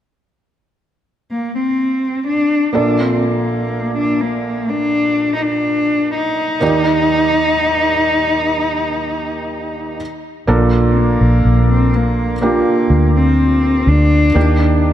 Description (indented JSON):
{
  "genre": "pop",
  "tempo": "62 BPM",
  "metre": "4/4",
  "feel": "straight",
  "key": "unclear",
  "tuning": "A4 = 445 Hz",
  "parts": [
    { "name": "dark cello", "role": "melody", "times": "1.3-14.8 s", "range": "Bb3 to Eb4", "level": "-16 LUFS", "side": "left 1 dB", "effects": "none" },
    { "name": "felt-muted upright piano", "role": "accompaniment", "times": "2.7-14.9 s", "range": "Bb1 to D5", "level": "-18 LUFS", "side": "right 2 dB", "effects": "none" },
    { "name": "vintage muted fingered electric bass", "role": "bass", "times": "10.5-14.9 s", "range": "Bb1 to Eb2", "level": "-13 LUFS", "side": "equal", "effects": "none" }
  ],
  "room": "moderate lush hall reverb, RT60 2.7 s",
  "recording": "dark, warm production",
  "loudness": "-13 LUFS",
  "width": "side -11 dB against mid",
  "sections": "0.0-2.7 A section; 2.7-10.5 B section; 10.5-14.9 C section",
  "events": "none",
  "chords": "0.0 N.C.; 2.7 Bbmaj7; 6.6 Ebmaj7; 10.0 N.C.; 10.5 Bbmaj7; 14.4 Ebmaj7",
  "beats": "0.81 1.78 | 2.75 3.71 4.68 5.65 | 6.62 7.58 8.55 9.52 | 10.49 11.46 12.42 13.39 | 14.36"
}